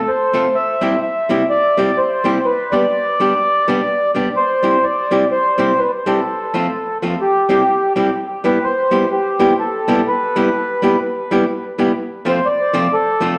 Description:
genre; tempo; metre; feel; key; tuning
ska; 126 BPM; 4/4; swing 59% on 8ths; C major; A4 = 440 Hz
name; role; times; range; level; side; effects
mellow accordion; melody; 0.0-13.4 s; G4 to E5; -19 LUFS; equal; dub echo
archtop guitar, miked and amplified; accompaniment; 0.3-13.3 s; F3 to A4; -21 LUFS; equal; none
room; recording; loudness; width
wet large studio reverb, RT60 1.1 s; dark, warm production; -17 LUFS; mono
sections
0.0-8.2 A section; 8.2-13.4 B section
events
none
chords
0.0 F; 0.5 C; 2.4 G; 4.3 C; 6.3 F; 7.2 C; 8.2 Cmaj7 (rootless); 12.0 Dm7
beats
0.06 | 0.53 1.01 1.49 1.96 | 2.44 2.92 3.40 3.87 | 4.35 4.83 5.30 5.78 | 6.26 6.73 7.21 7.69 | 8.16 8.64 9.12 9.60 | 10.07 10.55 11.03 11.50 | 11.98 12.46 12.93

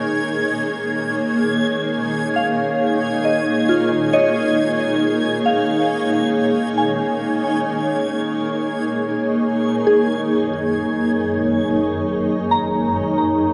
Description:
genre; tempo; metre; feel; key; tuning
ambient; 68 BPM; 4/4; straight; unclear; A4 = 440 Hz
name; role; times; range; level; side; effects
granular cloud pad; sustained chords; 0.0-13.5 s; Gb2 to Db5; -21 LUFS; equal; built-in reverb
soft synth bell; arpeggios; 0.0-13.5 s; F4 to Bb5; -24 LUFS; equal; chorus, delay
backwards swelling texture; texture; 0.0-9.9 s; Ab6; -30 LUFS; equal; built-in reverb
room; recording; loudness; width
wet cathedral reverb, RT60 5.9 s; nothing above 10.9 kHz; -19 LUFS; mono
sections
0.0-9.9 A section; 9.9-13.5 B section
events
none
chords
0.0 Db6; 9.9 Bbm7/Gb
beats
0.16 1.04 1.92 | 2.81 3.69 4.57 5.45 | 6.33 7.22 8.10 8.98 | 9.86 10.75 11.63 12.51 | 13.39

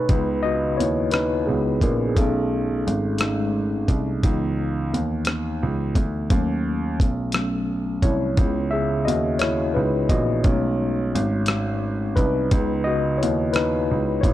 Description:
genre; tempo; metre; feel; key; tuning
slow six-eight R&B; 58 BPM (dotted quarters); 6/8; straight; C# minor; A4 = 440 Hz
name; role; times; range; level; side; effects
tine electric piano; accompaniment; 0.0-14.3 s; B2 to E5; -23 LUFS; left 2 dB; medium stereo tremolo
warm baby grand piano; bass; 0.1-14.3 s; G#1 to D#2; -24 LUFS; right 1 dB; none
dusty soul sampler-style drum kit; drums; 0.1-14.3 s; hi-hat, kick drum, rim click; -21 LUFS; equal; none
room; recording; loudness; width
digital ambience; dry, gritty hardware recording, transformer saturation; -20 LUFS; side -14 dB against mid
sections
0.1-14.3 A section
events
tine electric piano solo 0.1-14.3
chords
0.1 C#m9; 2.2 B13; 4.2 C#m9; 6.3 D#m7b5; 8.4 C#m9; 10.4 B13; 12.5 C#m9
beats
| 0.10 1.13 | 2.17 3.20 | 4.24 5.27 | 6.30 7.34 | 8.37 9.41 | 10.44 11.48 | 12.51 13.55

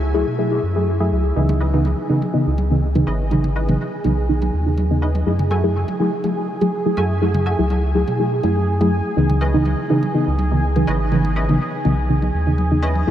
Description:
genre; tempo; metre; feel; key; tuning
dub techno; 123 BPM; 4/4; straight; C# minor; A4 = 437 Hz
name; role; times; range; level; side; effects
warm sub bass; bass; 0.0-13.1 s; G#1 to B2; -20 LUFS; equal; none
bubbling stepped-filter texture; texture; 0.0-13.1 s; E4 to E6; -28 LUFS; right 4 dB; chorus, built-in reverb
deep mellow chord stab; stabs; 0.1-13.1 s; C#3 to G#4; -19 LUFS; equal; chorus, phaser, dub echo
electronic toms; percussion; 1.5-13.0 s; none; -28 LUFS; equal; dub echo
filtered dub chord stab; riff; 1.6-13.0 s; C#4 to G#5; -31 LUFS; left 1 dB; ensemble chorus, dub echo
room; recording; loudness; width
moderate huge ambient reverb, RT60 7.5 s; dreamy mix soaked in reverb; -16 LUFS; side -11 dB against mid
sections
0.0-13.1 A section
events
filter sweep on synth stab 0.0-13.1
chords
0.0 F#m9; 1.4 C#m9; 5.3 F#m9; 9.2 C#m9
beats
0.39 0.87 | 1.36 1.85 2.34 2.83 | 3.31 3.80 4.29 4.78 | 5.26 5.75 6.24 6.73 | 7.22 7.70 8.19 8.68 | 9.17 9.65 10.14 10.63 | 11.12 11.61 12.09 12.58 | 13.07

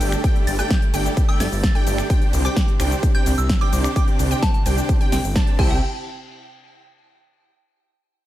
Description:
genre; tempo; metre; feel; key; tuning
EDM, festival progressive house; 129 BPM; 4/4; straight; C major; A4 = 441 Hz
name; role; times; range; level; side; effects
rich symphonic string section; sustained chords; 0.0-5.8 s; C3 to G4; -31 LUFS; right 2 dB; sidechain pumping
wide unison pluck; arpeggios; 0.0-5.8 s; G5 to A5; -32 LUFS; equal; sidechain pumping, digital delay
dense compressed supersaw; riff; 0.0-5.8 s; D4 to A5; -27 LUFS; equal; sidechain pumping, digital delay
detuned saw bass; bass; 0.0-5.8 s; G1 to C2; -22 LUFS; equal; sidechain pumping
big-room dance drum kit; drums; 0.0-5.7 s; crash cymbal, finger snaps, hi-hat, ride cymbal, shaker, snare drum; -28 LUFS; equal; overdrive, studio reverb
electronic kick drum; drums; 0.2-5.7 s; none; -19 LUFS; equal; overdrive, studio reverb
soft synth bell; melody; 0.5-5.8 s; G5 to A6; -30 LUFS; equal; chorus, phaser, digital delay
room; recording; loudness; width
little or no reverb; none; -17 LUFS; side -14 dB against mid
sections
0.0-5.8 A section; 5.8-7.7 B section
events
drop 0.0-5.8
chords
0.0 Gsus2; 2.1 Csus2; 5.6 C; 5.8 N.C.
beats
| 0.24 0.70 1.17 1.64 | 2.10 2.56 3.03 3.50 | 3.96 4.42 4.89 5.36 | 5.82

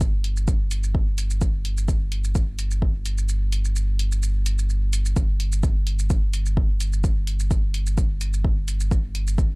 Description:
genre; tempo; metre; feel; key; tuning
dub techno; 128 BPM; 4/4; swing 53% on 16ths; unclear; A4 = 439 Hz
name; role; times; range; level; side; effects
warm sub bass; bass; 0.0-9.6 s; G1; -23 LUFS; equal; tube saturation, sidechain pumping
electronic kick drum; drums; 0.0-9.5 s; none; -22 LUFS; equal; none
electronic shaker and hi-hat; drums; 0.0-9.5 s; none; -33 LUFS; right 1 dB; none
room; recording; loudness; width
little or no reverb; dry, gritty hardware recording; -20 LUFS; side -31 dB against mid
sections
0.0-5.2 A section; 5.2-9.6 A section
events
kick drops out 3.3-5.2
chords
none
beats
0.01 0.48 0.95 | 1.42 1.88 2.35 2.82 | 3.29 3.76 4.23 4.70 | 5.17 5.63 6.10 6.57 | 7.04 7.51 7.98 8.45 | 8.91 9.38

